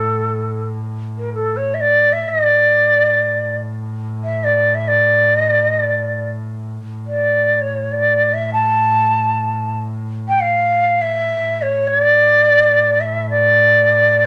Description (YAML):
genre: Arabic maqam ensemble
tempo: free time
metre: none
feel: none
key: A maqam hijaz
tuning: A4 = 440 Hz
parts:
  - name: breathy bright ney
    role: melody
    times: 0.0-14.3 s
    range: A4 to A5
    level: -16 LUFS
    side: equal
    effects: none
  - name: rich double bass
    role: drone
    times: 0.0-14.3 s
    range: A2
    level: -27 LUFS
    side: equal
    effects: none
room: wet studio reverb, RT60 0.7 s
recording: none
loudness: -16 LUFS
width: mono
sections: 0.0-14.3 A section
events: none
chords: none